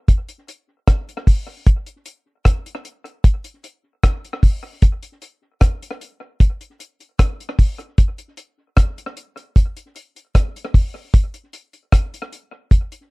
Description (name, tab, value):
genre	reggae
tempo	76 BPM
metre	4/4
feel	straight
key	none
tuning	none
part	deep reggae drum kit	drums	0.1-13.1 s	hi-hat, kick drum, rim click	-15 LUFS	equal	none
room	little or no reverb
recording	dry, close 1970s-style studio recording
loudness	-17 LUFS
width	side -28 dB against mid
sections	0.0-13.1 A section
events	none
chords	none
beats	0.09 0.88 | 1.67 2.46 3.25 4.04 | 4.83 5.61 6.40 7.19 | 7.98 8.77 9.56 10.35 | 11.13 11.92 12.71